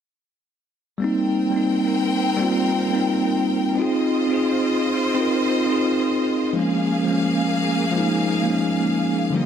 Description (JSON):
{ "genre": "drum and bass", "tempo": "173 BPM", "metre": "4/4", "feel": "straight", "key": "unclear", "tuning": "A4 = 441 Hz", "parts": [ { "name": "bell-like tine electric piano", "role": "accompaniment", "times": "1.0-9.5 s", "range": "D3 to Bb4", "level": "-19 LUFS", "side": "equal", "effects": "auto-pan, low-pass filter, tape echo" }, { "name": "clear studio string section", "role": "sustained chords", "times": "1.0-9.5 s", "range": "D3 to G5", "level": "-25 LUFS", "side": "left 1 dB", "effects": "none" } ], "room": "moderate plate reverb, RT60 3.1 s", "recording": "none", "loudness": "-18 LUFS", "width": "side -8 dB against mid", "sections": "1.0-9.5 A section", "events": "filter sweep on tine electric piano 1.0-9.5", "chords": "1.0 Eb69/G; 3.8 Ab69/C; 6.6 Db69/F" }